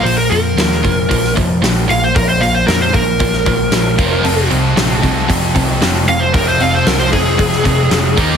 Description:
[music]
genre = hard rock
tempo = 115 BPM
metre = 4/4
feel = straight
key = F minor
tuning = A4 = 440 Hz
[part]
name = lead guitar through a small cranked amp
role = melody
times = 0.0-8.1 s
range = Ab4 to F5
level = -16 LUFS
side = equal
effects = overdrive, tape echo
[part]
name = sludgy distorted guitar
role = riff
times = 0.0-8.4 s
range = F2 to Eb4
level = -20 LUFS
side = left 9 dB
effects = overdrive
[part]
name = tight distorted guitar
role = riff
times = 0.0-8.4 s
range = F2 to Eb4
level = -20 LUFS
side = right 9 dB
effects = distortion
[part]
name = vintage muted picked electric bass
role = bass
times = 0.0-8.4 s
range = F1 to F2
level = -19 LUFS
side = equal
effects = none
[part]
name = huge arena drum kit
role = drums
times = 0.1-8.3 s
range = hi-hat, kick drum, snare drum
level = -17 LUFS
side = equal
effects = none
[part]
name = distorted electric guitar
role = riff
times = 4.2-8.4 s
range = Eb3 to F4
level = -19 LUFS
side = right 1 dB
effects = overdrive
[sound]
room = small room ambience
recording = heavily compressed radio sound, multiband compression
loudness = -11 LUFS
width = side -7 dB against mid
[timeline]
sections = 0.0-8.4 A section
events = lead electric guitar solo 0.0-8.4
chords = 0.0 Bb5; 4.0 Fm

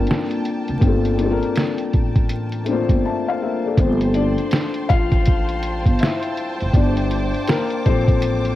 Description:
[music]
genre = lo-fi hip hop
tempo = 81 BPM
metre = 4/4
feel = swing 62% on 16ths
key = G dorian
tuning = A4 = 439 Hz
[part]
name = felt-muted upright piano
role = accompaniment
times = 0.0-8.6 s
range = F3 to A5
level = -21 LUFS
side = left 4 dB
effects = cassette tape
[part]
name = warm studio string section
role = sustained chords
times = 0.0-8.6 s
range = Bb3 to D6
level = -30 LUFS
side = right 1 dB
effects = cassette tape
[part]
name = upright bass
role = bass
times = 0.0-8.6 s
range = F1 to A1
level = -22 LUFS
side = right 1 dB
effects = none
[part]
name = lo-fi sampler-style drum kit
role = drums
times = 0.1-8.6 s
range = hi-hat, kick drum, snare drum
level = -18 LUFS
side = equal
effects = cassette tape
[sound]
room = studio ambience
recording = home recording on cassette, vinyl crackle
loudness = -17 LUFS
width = side -14 dB against mid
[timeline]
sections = 0.0-3.8 A section; 3.8-8.6 A section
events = felt piano fill 2.7-3.8; felt piano solo 3.8-8.6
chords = 0.0 Gm11

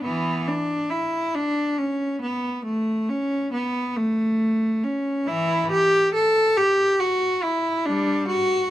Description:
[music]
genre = classical, baroque-style suite movement for unaccompanied cello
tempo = 69 BPM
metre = 3/4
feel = rubato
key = A major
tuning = A4 = 440 Hz
[part]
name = clear cello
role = solo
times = 0.0-8.7 s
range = E3 to A4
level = -20 LUFS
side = equal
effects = none
[sound]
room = light reverb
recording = minimal, uncompressed stereo recording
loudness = -20 LUFS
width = side -13 dB against mid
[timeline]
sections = 0.0-8.7 A section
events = none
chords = none

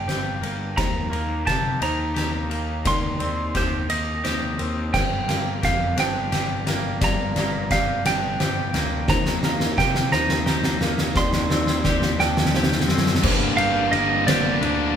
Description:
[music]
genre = post-rock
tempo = 58 BPM (dotted quarters)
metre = 6/8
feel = straight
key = G minor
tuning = A4 = 440 Hz
[part]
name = clean lap steel guitar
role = melody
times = 0.0-15.0 s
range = C5 to C6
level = -26 LUFS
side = right 4 dB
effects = digital delay
[part]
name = felt-muted upright piano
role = arpeggios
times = 0.0-15.0 s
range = Bb4 to D6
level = -35 LUFS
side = right 1 dB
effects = none
[part]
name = twangy electric guitar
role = arpeggios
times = 0.0-15.0 s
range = G2 to G4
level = -30 LUFS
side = left 1 dB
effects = none
[part]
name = fuzz picked electric bass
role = bass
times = 0.0-14.9 s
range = G1 to C3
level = -27 LUFS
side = left 1 dB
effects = overdrive
[part]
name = oversized low-tuned drum kit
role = drums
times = 0.1-14.8 s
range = crash cymbal, kick drum, ride cymbal, snare drum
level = -23 LUFS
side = left 1 dB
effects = none
[part]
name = distorted electric guitar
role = riff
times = 13.2-15.0 s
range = G2 to D4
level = -25 LUFS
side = right 2 dB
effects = distortion
[part]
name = tight distorted guitar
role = riff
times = 13.2-15.0 s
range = G2 to D4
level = -26 LUFS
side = left 8 dB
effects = distortion
[sound]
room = wet studio reverb, RT60 0.5 s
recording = band playing live in one room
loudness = -20 LUFS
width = side -8 dB against mid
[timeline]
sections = 0.0-13.2 A section; 13.2-15.0 B section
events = build-up 0.0-13.2; drum fill 0.0-13.2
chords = 0.0 Gm; 0.8 Eb; 2.9 Cmadd9/Eb; 4.9 Gm; 9.1 Eb; 11.2 Cmadd9/Eb; 13.2 Gm

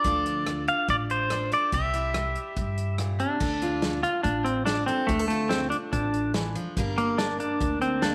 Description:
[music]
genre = honky-tonk and classic country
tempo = 143 BPM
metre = 4/4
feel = straight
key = D minor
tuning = A4 = 440 Hz
[part]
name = pedal steel guitar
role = melody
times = 0.0-8.1 s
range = A3 to F5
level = -28 LUFS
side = equal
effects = tape echo
[part]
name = picked steel-string acoustic guitar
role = accompaniment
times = 0.0-8.1 s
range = G2 to Bb4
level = -35 LUFS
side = equal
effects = none
[part]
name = upright bass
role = bass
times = 0.0-8.1 s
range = G1 to G2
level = -34 LUFS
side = equal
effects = none
[part]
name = natural country drum kit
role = drums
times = 0.0-8.1 s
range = crash cymbal, hi-hat, kick drum, rim click, snare drum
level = -35 LUFS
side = equal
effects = none
[sound]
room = moderate echo chamber reverb, RT60 1.2 s, small room ambience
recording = none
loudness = -27 LUFS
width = mono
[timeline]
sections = 0.0-3.4 A section; 3.4-8.1 A section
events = none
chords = 0.0 Dm; 1.7 C; 3.4 Dm; 6.8 Gm

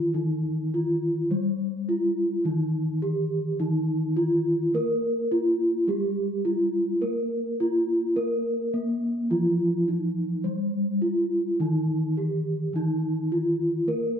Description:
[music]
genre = gamelan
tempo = 105 BPM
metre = 4/4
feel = straight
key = unclear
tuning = A4 = 440 Hz
[part]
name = gamelan-type bronze metallophone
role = melody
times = 0.0-14.2 s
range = G3+20c to Bb4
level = -25 LUFS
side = equal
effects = none
[part]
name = gamelan-type bronze metallophone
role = accompaniment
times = 0.0-14.2 s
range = Eb3+30c to Bb3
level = -29 LUFS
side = right 1 dB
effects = none
[sound]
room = moderate stone room reverb, RT60 1.1 s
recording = band playing live in one room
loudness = -23 LUFS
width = side -8 dB against mid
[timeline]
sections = 0.0-1.3 A section; 1.3-14.2 B section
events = none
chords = none

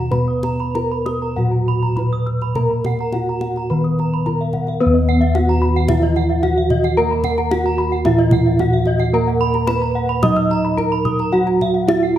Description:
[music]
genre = Balinese gamelan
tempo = 94-111 BPM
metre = 4/4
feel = straight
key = unclear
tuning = A4 = 445 Hz
[part]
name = gamelan-type bronze metallophone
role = melody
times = 0.0-12.2 s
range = Cb4-20c to Eb5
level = -21 LUFS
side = right 2 dB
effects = none
[part]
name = gamelan-type bronze metallophone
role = accompaniment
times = 0.0-12.2 s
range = Eb3 to Eb4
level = -26 LUFS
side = right 4 dB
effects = none
[part]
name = gamelan-type bronze metallophone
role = arpeggios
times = 0.0-12.2 s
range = Fb5+20c to Eb6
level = -27 LUFS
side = right 5 dB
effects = none
[part]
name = gamelan-type bossed gongs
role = bass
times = 0.0-12.2 s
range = Eb2 to Cb5-20c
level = -19 LUFS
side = left 1 dB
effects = none
[part]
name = gamelan-type bronze metallophone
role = arpeggios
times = 0.1-12.2 s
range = Cb5-20c to Fb6+20c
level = -24 LUFS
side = left 4 dB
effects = none
[part]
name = kendang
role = percussion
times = 0.1-12.0 s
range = none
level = -24 LUFS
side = left 1 dB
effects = none
[sound]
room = moderate recital hall reverb, RT60 1.7 s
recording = none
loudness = -15 LUFS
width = side -11 dB against mid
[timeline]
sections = 0.0-4.8 A section; 4.8-12.2 B section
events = none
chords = none

